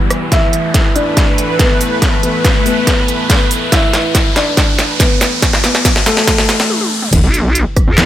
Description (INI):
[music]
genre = heavy wobble dubstep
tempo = 141 BPM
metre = 4/4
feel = half-time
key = E minor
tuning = A4 = 440 Hz
[part]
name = felt-muted upright piano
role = melody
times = 0.0-7.0 s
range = A3 to E5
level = -18 LUFS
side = left 1 dB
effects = tape echo
[part]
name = lush unison pad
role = sustained chords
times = 0.0-8.1 s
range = E3 to G5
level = -21 LUFS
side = equal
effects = chorus, phaser, sidechain pumping
[part]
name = riser and sub drop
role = sound effects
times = 0.0-8.1 s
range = none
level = -19 LUFS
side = equal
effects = none
[part]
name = dubstep drum kit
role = drums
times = 0.1-8.1 s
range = crash cymbal, handclaps, hi-hat, rim click, snare drum, toms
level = -15 LUFS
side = equal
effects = high-pass filter on hats, high-pass filter on snare, high-pass filter on toms, high-pass filter on cymbals
[part]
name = electronic kick drum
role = drums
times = 0.3-7.9 s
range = none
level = -14 LUFS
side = equal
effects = none
[part]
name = metallic wobble bass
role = bass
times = 7.1-7.2 s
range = E1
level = -12 LUFS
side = equal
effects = distortion, chorus, overdrive
[part]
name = vowel-sweep wobble bass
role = bass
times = 7.2-8.1 s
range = B1 to E2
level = -13 LUFS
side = equal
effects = chorus, overdrive
[sound]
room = light reverb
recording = none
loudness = -10 LUFS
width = side -12 dB against mid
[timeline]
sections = 0.0-7.1 A section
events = build-up 0.0-7.1; riser 0.0-7.1; drum fill 0.3-6.7, 6.7-7.1; break 6.7-7.1; impact 7.1-8.1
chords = 0.0 E5; 7.1 Em